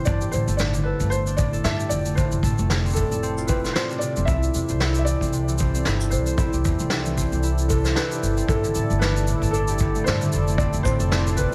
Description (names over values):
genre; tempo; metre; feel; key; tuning
folktronica; 114 BPM; 4/4; swing 56% on 16ths; C major; A4 = 440 Hz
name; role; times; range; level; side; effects
felt-muted upright piano; melody; 0.0-11.5 s; A4 to E5; -31 LUFS; equal; tape echo
concert harp; arpeggios; 0.0-11.5 s; A2 to C5; -28 LUFS; equal; tape echo
upright bass; bass; 0.1-11.4 s; F1 to G2; -27 LUFS; equal; tube saturation
kick drum; drums; 0.1-11.5 s; none; -27 LUFS; equal; none
shaker and snare drum; drums; 0.1-11.5 s; none; -31 LUFS; equal; none
warm analog pad; sustained chords; 2.3-11.5 s; E4 to D5; -35 LUFS; equal; chorus
room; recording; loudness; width
light reverb, studio ambience; vinyl crackle; -22 LUFS; mono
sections
0.0-11.5 A section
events
none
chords
0.1 Gsus2; 4.3 C; 8.5 Gsus2